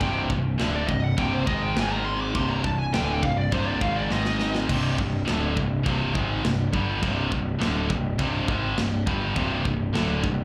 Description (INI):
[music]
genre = heavy metal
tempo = 103 BPM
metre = 4/4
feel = straight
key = C minor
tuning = A4 = 440 Hz
[part]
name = high-gain lead guitar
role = melody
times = 0.0-4.5 s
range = C5 to D6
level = -32 LUFS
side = equal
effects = distortion, tape echo
[part]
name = scooped high-gain guitar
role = riff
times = 0.0-10.4 s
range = C2 to Ab3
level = -30 LUFS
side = equal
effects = distortion, slapback echo
[part]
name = tight distorted guitar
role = riff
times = 0.0-10.4 s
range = C2 to Ab3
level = -33 LUFS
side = equal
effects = distortion
[part]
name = fuzz picked electric bass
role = bass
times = 0.0-10.4 s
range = C1 to Ab1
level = -30 LUFS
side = equal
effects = overdrive
[part]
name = tight metal drum kit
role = drums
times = 0.0-10.4 s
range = china cymbal, crash cymbal, kick drum, snare drum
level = -33 LUFS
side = equal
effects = none
[sound]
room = light reverb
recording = live gig heard through the venue's PA, club reverb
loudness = -25 LUFS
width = mono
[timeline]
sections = 0.0-4.7 A section; 4.7-10.4 B section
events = lead electric guitar solo 0.0-4.7; drum fill 4.1-4.7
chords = 0.0 Cm; 1.8 Ab5; 2.4 Cm; 4.1 Ab5; 4.7 Cm